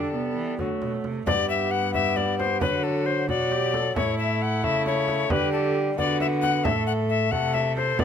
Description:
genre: classical, renaissance-style consort dance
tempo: 89 BPM (dotted quarters)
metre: 6/8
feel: straight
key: G major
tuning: A4 = 440 Hz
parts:
  - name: bright alto recorder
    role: melody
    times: 0.0-8.0 s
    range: F#4 to F#5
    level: -26 LUFS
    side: left 7 dB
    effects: none
  - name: rich viola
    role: second line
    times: 0.0-8.0 s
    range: A3 to A4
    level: -30 LUFS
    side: right 8 dB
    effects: none
  - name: mellow bassoon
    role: accompaniment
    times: 0.0-8.0 s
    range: F#3 to B3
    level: -29 LUFS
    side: left 3 dB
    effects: none
  - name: warm cello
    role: bass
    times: 0.0-8.0 s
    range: G2 to E3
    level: -28 LUFS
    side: right 1 dB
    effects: none
  - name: frame drum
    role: percussion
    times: 0.6-8.0 s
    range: none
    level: -32 LUFS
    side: right 3 dB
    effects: none
room: light reverb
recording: close, detailed microphones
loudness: -22 LUFS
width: side -8 dB against mid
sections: 0.0-1.3 A section; 1.3-8.0 A section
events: none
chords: 0.0 Dsus4; 0.6 D (rootless); 1.3 G; 2.6 D; 4.0 A; 5.3 Dsus4; 6.0 D; 6.7 Am

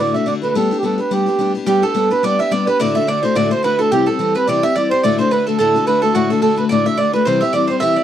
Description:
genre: celtic folk, Celtic reel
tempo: 215 BPM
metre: 4/4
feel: swing 56% on 8ths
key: G major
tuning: A4 = 439 Hz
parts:
  - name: mellow accordion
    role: melody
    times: 0.0-8.0 s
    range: F#4 to E5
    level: -17 LUFS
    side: right 4 dB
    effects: none
  - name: picked steel-string acoustic guitar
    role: accompaniment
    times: 0.0-8.0 s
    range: D2 to G4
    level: -18 LUFS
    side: left 6 dB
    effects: none
  - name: mandolin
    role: second line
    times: 1.7-8.0 s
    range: F#4 to E5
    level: -22 LUFS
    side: right 4 dB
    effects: none
room: light reverb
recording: dry, close 1970s-style studio recording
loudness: -14 LUFS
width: side -10 dB against mid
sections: 0.0-1.7 A section; 1.7-8.0 A section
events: none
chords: 0.0 D; 0.6 G; 2.8 D; 3.9 C; 5.0 D; 7.3 C

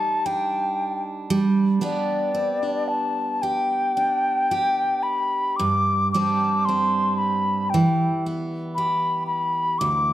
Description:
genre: celtic folk, Celtic slow air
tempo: 57 BPM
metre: 4/4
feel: rubato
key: unclear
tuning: A4 = 439 Hz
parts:
  - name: wooden flute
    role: melody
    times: 0.0-10.1 s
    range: D5 to D6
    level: -22 LUFS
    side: left 1 dB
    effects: none
  - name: picked steel-string acoustic guitar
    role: accompaniment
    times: 0.0-10.1 s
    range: D2 to G4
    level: -24 LUFS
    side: right 2 dB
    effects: none
room: moderate scoring stage reverb, RT60 1.6 s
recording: none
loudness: -20 LUFS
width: side -13 dB against mid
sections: 0.0-10.1 A section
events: none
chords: 0.0 Ebmaj7/G; 1.3 G; 5.6 Gsus4; 7.7 Em

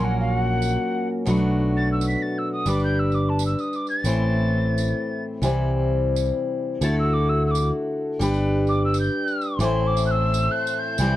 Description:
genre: acoustic folk duo or small band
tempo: 130 BPM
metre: 3/4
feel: swing 60% on 8ths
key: A dorian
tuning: A4 = 440 Hz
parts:
  - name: mellow wooden whistle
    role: melody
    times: 0.0-11.2 s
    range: F#5 to B6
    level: -27 LUFS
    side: equal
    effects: none
  - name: picked steel-string acoustic guitar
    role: accompaniment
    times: 0.0-11.2 s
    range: A2 to C5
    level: -24 LUFS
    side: left 2 dB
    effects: none
  - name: fingered electric bass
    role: bass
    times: 0.0-11.2 s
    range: G1 to D2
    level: -23 LUFS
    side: right 1 dB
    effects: none
  - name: tambourine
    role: percussion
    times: 0.6-11.1 s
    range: none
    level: -37 LUFS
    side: right 10 dB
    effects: none
  - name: warm studio string section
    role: sustained chords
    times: 9.6-11.2 s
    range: G4 to C6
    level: -35 LUFS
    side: left 1 dB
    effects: none
room: moderate small room reverb, RT60 0.5 s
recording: worn, warbling old tape, cassette tape, warbly pitch drift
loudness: -20 LUFS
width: side -14 dB against mid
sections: 0.0-9.6 A section; 9.6-11.2 B section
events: tin whistle solo 0.0-9.6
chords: 0.0 F#/A#; 1.3 Bm7; 2.7 G; 4.0 Am; 5.4 C; 6.8 Dadd9; 8.2 G; 9.6 Am

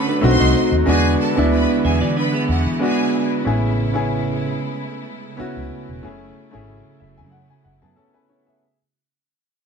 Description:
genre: soul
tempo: 93 BPM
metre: 4/4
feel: swing 54% on 16ths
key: unclear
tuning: A4 = 440 Hz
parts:
  - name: bright symphonic violin section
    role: second line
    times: 0.0-3.3 s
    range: F#4 to C6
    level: -25 LUFS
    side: equal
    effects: none
  - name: clear baby grand piano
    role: accompaniment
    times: 0.0-8.8 s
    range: G#3 to A5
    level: -20 LUFS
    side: equal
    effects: none
  - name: rich studio string section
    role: sustained chords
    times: 0.0-8.6 s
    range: C3 to E4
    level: -26 LUFS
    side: right 3 dB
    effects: none
  - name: clean electric guitar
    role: riff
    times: 0.0-3.3 s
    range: B3 to E5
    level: -26 LUFS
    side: right 3 dB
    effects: spring reverb
  - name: vintage muted fingered electric bass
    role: bass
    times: 0.2-7.9 s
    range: E1 to E3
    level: -20 LUFS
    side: equal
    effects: none
room: moderate small room reverb, RT60 0.5 s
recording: band playing live in one room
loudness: -16 LUFS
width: side -6 dB against mid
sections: 0.0-8.6 A section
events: fade-out 0.0-8.6; grand piano fill 6.7-8.6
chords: 0.2 B7b9; 0.9 E7; 3.5 Amaj7; 6.0 F#m7

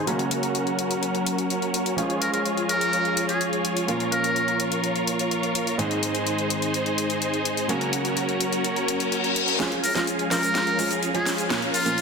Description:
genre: EDM, festival progressive house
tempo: 126 BPM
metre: 4/4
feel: straight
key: Db major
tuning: A4 = 440 Hz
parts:
  - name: warm concert grand piano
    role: accompaniment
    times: 0.0-11.9 s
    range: Ab2 to F4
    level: -31 LUFS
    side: right 3 dB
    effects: dub echo
  - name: lush unison pad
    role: sustained chords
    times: 0.0-12.0 s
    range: Eb3 to F5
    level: -31 LUFS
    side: left 1 dB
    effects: chorus, vintage 12-bit sampler grit
  - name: big supersaw lead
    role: riff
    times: 0.0-12.0 s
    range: Db4 to Db5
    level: -26 LUFS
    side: equal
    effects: low-pass filter, dub echo
  - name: house drum kit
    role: drums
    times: 0.1-12.0 s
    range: hi-hat, shaker, snare drum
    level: -29 LUFS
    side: left 3 dB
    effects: overdrive
  - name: trumpet with metal mute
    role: melody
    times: 2.2-4.6, 9.8-12.0 s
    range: F4 to Bb4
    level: -26 LUFS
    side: equal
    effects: dub echo
  - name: reverse cymbal and riser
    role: sound effects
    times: 8.9-12.0 s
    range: none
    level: -30 LUFS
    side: left 5 dB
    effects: none
room: wet lush hall reverb, RT60 2.0 s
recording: dense, heavily limited modern master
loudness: -22 LUFS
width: side -5 dB against mid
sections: 0.0-9.6 A section; 9.6-12.0 B section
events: filter sweep on analog synth pad 0.0-9.6; reverse cymbal 8.9-9.6; build-up 9.6-12.0; drum fill 9.6-12.0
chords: 0.1 Gb; 2.0 Db; 3.9 Bbm; 5.8 Ab; 7.7 Gb; 9.6 Db; 11.5 Bbm

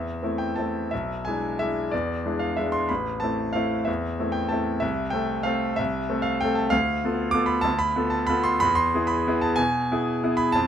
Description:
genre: classical, piano waltz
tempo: 171-199 BPM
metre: 3/4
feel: rubato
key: A minor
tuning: A4 = 442 Hz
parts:
  - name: bright concert grand piano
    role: solo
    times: 0.0-10.7 s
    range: A1 to D6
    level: -22 LUFS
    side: equal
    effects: none
room: light reverb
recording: close, detailed microphones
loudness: -22 LUFS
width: side -9 dB against mid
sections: 0.0-10.7 A section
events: none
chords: 0.0 Am; 0.9 E7/B; 2.9 Am; 4.8 Am/C; 6.7 Bm7b5/D; 8.6 E

